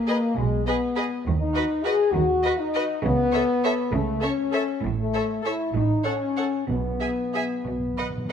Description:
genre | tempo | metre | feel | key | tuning
classical, orchestral ballroom waltz | 178-222 BPM | 3/4 | rubato | E major | A4 = 437 Hz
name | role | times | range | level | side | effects
mellow French horn section | sustained chords | 0.0-8.3 s | G#3 to G#4 | -24 LUFS | left 3 dB | none
rich studio violin section | melody | 0.1-8.1 s | D#5 to G#5 | -34 LUFS | left 1 dB | none
warm studio violin section | second line | 0.1-8.3 s | B4 to E5 | -32 LUFS | right 1 dB | none
clear studio viola section | accompaniment | 0.1-8.1 s | F#4 to B4 | -32 LUFS | right 1 dB | none
rich studio cello section | bass | 0.4-7.9 s | A2 to D#3 | -30 LUFS | right 3 dB | none
rich studio double bass section | bass | 0.4-7.9 s | A1 to D#2 | -28 LUFS | right 4 dB | none
timpani | percussion | 6.7-8.3 s | B2 | -33 LUFS | equal | none
room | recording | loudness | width
moderate recital hall reverb, RT60 1.4 s | close, detailed microphones | -22 LUFS | side -8 dB against mid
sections
0.0-8.3 A section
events
timpani fill 7.7-8.3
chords
0.0 G#m/B; 1.3 B/D# (rootless); 3.0 A/C#; 4.8 A5; 5.7 F#m/A (rootless); 6.7 E/B (rootless); 7.7 N.C.

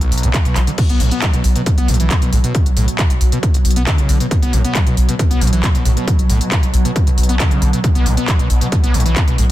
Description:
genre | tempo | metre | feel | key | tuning
driving peak-time techno | 136 BPM | 4/4 | straight | unclear | A4 = 439 Hz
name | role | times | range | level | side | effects
screaming distorted acid line | riff | 0.0-9.4 s | B1 to B3 | -21 LUFS | left 1 dB | distortion, lush chorus, cassette tape, sidechain pumping, tape echo
saturated sub bass | bass | 0.0-9.5 s | B1 | -17 LUFS | equal | overdrive, sidechain pumping, low-pass filter
swarming drone | drone | 0.0-9.5 s | B2 to F#3 | -23 LUFS | right 1 dB | built-in reverb, sidechain pumping
techno drum kit | drums | 0.0-9.5 s | crash cymbal, handclaps, hi-hat | -22 LUFS | equal | overdrive
electronic kick drum | drums | 0.3-9.3 s | none | -16 LUFS | equal | none
room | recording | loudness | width
light reverb, digital ambience | dense, heavily limited modern master | -12 LUFS | side -14 dB against mid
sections
0.0-9.5 A section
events
none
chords
0.0 B5

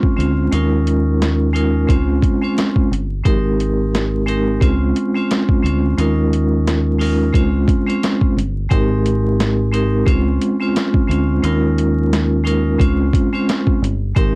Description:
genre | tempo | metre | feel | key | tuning
hip hop, boom-bap hip-hop | 88 BPM | 4/4 | swing 57% on 16ths | unclear | A4 = 440 Hz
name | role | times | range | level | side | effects
vibraphone with hard mallets | accompaniment | 0.0-14.4 s | Ab3 to C5 | -17 LUFS | equal | cassette tape
boom bap sampler-style drum kit | drums | 0.0-14.3 s | hi-hat, kick drum, snare drum | -17 LUFS | equal | cassette tape
deep dub fingered electric bass | bass | 0.2-14.4 s | G1 to Eb2 | -18 LUFS | equal | none
room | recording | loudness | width
little or no reverb | home recording on cassette, vinyl crackle | -14 LUFS | side -26 dB against mid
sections
0.0-14.4 A section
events
none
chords
0.0 Dbmaj7; 0.5 Eb9sus4; 1.9 Dbmaj7; 3.3 Abmaj9; 4.6 Dbmaj7; 6.0 Eb9sus4; 7.3 Dbmaj7; 8.7 Abmaj9; 10.1 Dbmaj7; 11.4 Eb9sus4; 12.8 Dbmaj7

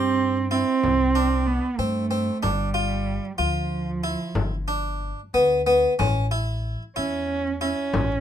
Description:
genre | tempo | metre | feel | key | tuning
contemporary instrumental, chamber music in an uneven meter | 186 BPM (eighths) | 11/8 | straight | unclear | A4 = 440 Hz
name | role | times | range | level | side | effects
warm cello | melody | 0.0-8.2 s | F3 to C#4 | -24 LUFS | right 4 dB | none
harpsichord | arpeggios | 0.0-8.1 s | B3 to G4 | -25 LUFS | left 2 dB | none
upright bass | bass | 0.0-8.2 s | G1 to G2 | -28 LUFS | left 1 dB | none
frame drum | percussion | 0.8-8.2 s | none | -27 LUFS | left 3 dB | none
room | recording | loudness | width
light reverb | close, detailed microphones | -21 LUFS | side -10 dB against mid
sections
0.0-8.2 A section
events
none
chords
0.0 C; 2.4 G7; 6.0 A

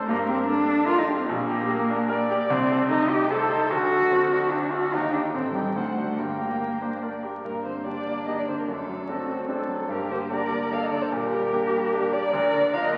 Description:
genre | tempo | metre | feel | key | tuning
quick classical-period movement for piano quartet | 148 BPM | 3/4 | straight | G minor | A4 = 440 Hz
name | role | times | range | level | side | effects
clear concert grand piano | accompaniment | 0.0-13.0 s | A1 to C5 | -31 LUFS | equal | none
muted viola | accompaniment | 0.0-13.0 s | G3 to Eb5 | -35 LUFS | equal | none
muted cello | second line | 0.1-13.0 s | G3 to Bb4 | -28 LUFS | equal | none
muted violin | melody | 0.5-13.0 s | G4 to G5 | -32 LUFS | equal | none
room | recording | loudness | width
wet concert hall reverb, RT60 2.0 s | very old 78 rpm record, vinyl crackle | -25 LUFS | mono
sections
0.0-7.4 A section; 7.4-13.0 A section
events
none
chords
0.1 Gm; 1.3 Gm/Bb; 2.5 Adim/C; 3.7 D7; 4.9 Eb; 5.3 Am7b5; 5.8 D7; 6.2 Gm; 8.7 D7/F#; 9.9 Gm; 11.1 Gm/Bb; 12.3 Bb/D

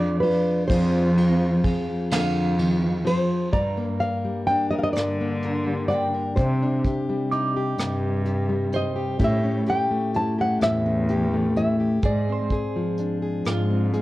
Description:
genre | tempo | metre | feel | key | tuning
acoustic folk-pop ballad | 42 BPM (dotted quarters) | 6/8 | straight | unclear | A4 = 442 Hz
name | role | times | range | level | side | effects
nylon-string guitar | melody | 0.0-13.9 s | B4 to A5 | -26 LUFS | equal | none
fingerpicked plugged-in steel-string acoustic guitar | accompaniment | 0.0-14.0 s | G2 to Bb4 | -24 LUFS | left 1 dB | none
clean electric guitar | arpeggios | 0.0-14.0 s | F4 to D6 | -32 LUFS | right 4 dB | tremolo
warm cello | bass | 0.0-14.0 s | E2 to D3 | -26 LUFS | right 1 dB | none
vintage brush drum kit | drums | 0.2-14.0 s | hi-hat, kick drum, ride cymbal, rim click, snare drum | -28 LUFS | equal | none
room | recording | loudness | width
moderate studio reverb, RT60 0.7 s | worn, warbling old tape, cassette tape, warbly pitch drift | -20 LUFS | side -17 dB against mid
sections
0.0-3.5 A section; 3.5-14.0 B section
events
none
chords
0.0 Ddim/F; 0.7 Fm; 3.5 Gm; 6.4 Cmadd9; 9.2 A7; 12.0 Dm7b5/Ab

